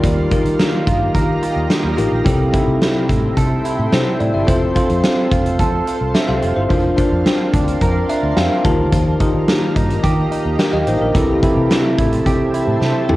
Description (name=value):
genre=1980s-style pop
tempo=108 BPM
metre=4/4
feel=straight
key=unclear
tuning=A4 = 440 Hz
part: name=bell-like tine electric piano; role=accompaniment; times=0.0-13.2 s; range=C3 to A5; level=-18 LUFS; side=left 2 dB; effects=medium stereo tremolo, cassette tape
part: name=shimmering ambient pad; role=sustained chords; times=0.0-13.2 s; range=G4 to C6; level=-27 LUFS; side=right 1 dB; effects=chorus, built-in reverb, cassette tape
part: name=direct-recorded clean electric guitar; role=riff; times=0.0-13.2 s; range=E3 to Bb4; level=-23 LUFS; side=right 3 dB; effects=lush chorus, cassette tape
part: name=vintage muted fingered electric bass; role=bass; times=0.0-13.2 s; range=F1 to Eb3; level=-20 LUFS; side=equal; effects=none
part: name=huge arena drum kit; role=drums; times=0.0-13.2 s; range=hi-hat, kick drum, snare drum, toms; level=-18 LUFS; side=equal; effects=cassette tape
room=moderate spring reverb, RT60 3.0 s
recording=home recording on cassette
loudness=-14 LUFS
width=side -17 dB against mid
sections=0.0-13.2 A section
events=tine electric piano fill 7.8-8.9; drum fill 12.8-13.2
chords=0.0 Ebadd9; 2.3 C6; 4.5 F; 6.7 Bbadd9/F; 8.6 Ebadd9; 11.1 C6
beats=| 0.04 0.59 1.15 1.70 | 2.26 2.81 3.37 3.93 | 4.48 5.04 5.59 6.15 | 6.70 7.26 7.82 8.37 | 8.93 9.48 10.04 10.59 | 11.15 11.70 12.26 12.81